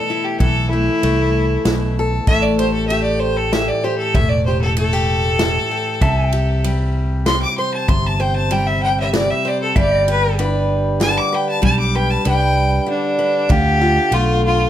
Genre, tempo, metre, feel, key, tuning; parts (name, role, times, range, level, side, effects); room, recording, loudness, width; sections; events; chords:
honky-tonk and classic country; 96 BPM; 3/4; straight; A minor; A4 = 440 Hz
rich fiddle; melody; 0.0-14.7 s; D4 to D6; -19 LUFS; equal
picked steel-string acoustic guitar; accompaniment; 0.0-14.7 s; A2 to C5; -21 LUFS; left 1 dB
fingered electric bass; bass; 0.4-14.6 s; E1 to D2; -19 LUFS; equal
natural country drum kit; drums; 0.4-14.3 s; kick drum, ride cymbal, snare drum; -20 LUFS; equal
pedal steel guitar; sustained chords; 6.0-13.5 s; D5 to G5; -26 LUFS; equal
light reverb; -15 LUFS; side -11 dB against mid
0.0-13.5 A section; 13.5-14.7 B section
fiddle solo 0.0-13.5; break 12.9-13.5
0.0 Esus4; 2.3 A5; 6.0 C; 9.8 G; 13.5 Dm